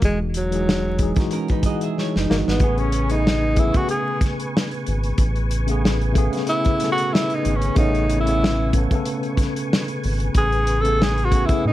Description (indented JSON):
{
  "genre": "R&B, neo-soul",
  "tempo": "93 BPM",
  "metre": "4/4",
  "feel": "swing 55% on 16ths",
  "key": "A lydian",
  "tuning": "A4 = 438 Hz",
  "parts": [
    { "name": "breathy tenor saxophone", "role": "melody", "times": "0.0-11.7 s", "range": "F#3 to A4", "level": "-22 LUFS", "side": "equal", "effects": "none" },
    { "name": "tine electric piano", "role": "accompaniment", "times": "0.0-11.7 s", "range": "C#3 to B4", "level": "-25 LUFS", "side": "left 1 dB", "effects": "medium stereo tremolo" },
    { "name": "round analog bass", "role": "bass", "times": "0.0-11.7 s", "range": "E1 to A2", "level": "-22 LUFS", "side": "equal", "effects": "none" },
    { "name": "warm soul drum kit", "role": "drums", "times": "0.0-11.6 s", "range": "hi-hat, kick drum, snare drum", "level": "-21 LUFS", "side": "equal", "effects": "none" },
    { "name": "electric guitar through a small old amp", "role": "second line", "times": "1.3-2.6 s", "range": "C#4 to E5", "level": "-28 LUFS", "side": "right 7 dB", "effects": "none" },
    { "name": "tonewheel organ", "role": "sustained chords", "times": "2.6-11.7 s", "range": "B4 to C#6", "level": "-32 LUFS", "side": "equal", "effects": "chorus vibrato, slow rotary speaker" }
  ],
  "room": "light reverb",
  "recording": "dark, warm production, vinyl crackle",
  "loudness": "-18 LUFS",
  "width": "side -14 dB against mid",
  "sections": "0.0-11.7 A section",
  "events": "tenor saxophone solo 0.0-11.7; drum fill 2.0-2.6",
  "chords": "0.0 Emaj9; 2.6 Amaj9"
}